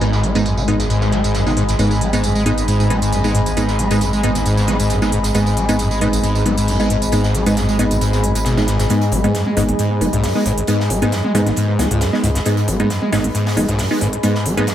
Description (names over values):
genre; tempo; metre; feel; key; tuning
driving peak-time techno; 135 BPM; 4/4; straight; G# minor; A4 = 440 Hz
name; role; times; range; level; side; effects
screaming distorted acid line; riff; 0.0-14.7 s; G#1 to G#3; -19 LUFS; equal; distortion, ensemble chorus, analog delay
wavetable chord stab; stabs; 0.0-14.6 s; G#3 to D#4; -21 LUFS; right 1 dB; analog delay
gritty driven synth bass; bass; 0.0-14.6 s; F#1 to G#2; -21 LUFS; equal; distortion, tube saturation
swarming drone; drone; 0.0-8.9 s; G#2 to G#3; -27 LUFS; left 1 dB; none
modern studio drum kit; drums; 0.0-14.7 s; hi-hat, snare drum; -31 LUFS; right 1 dB; high-pass filter on hats, low-pass filter on hats, high-pass filter on snare, low-pass filter on snare, high-pass filter on room, low-pass filter on room, tape echo
techno drum kit; drums; 0.0-14.7 s; hi-hat, tambourine, toms; -27 LUFS; equal; overdrive, low-pass filter on hats, low-pass filter on perc, low-pass filter on toms, tape echo
warbly tape-like pad; texture; 0.0-14.7 s; G#4 to B5; -24 LUFS; left 1 dB; chorus, built-in reverb
room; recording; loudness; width
light reverb, digital ambience; echo-heavy mix; -14 LUFS; side -11 dB against mid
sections
0.0-8.9 A section; 8.9-14.7 B section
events
build-up 8.9-14.7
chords
0.0 G#m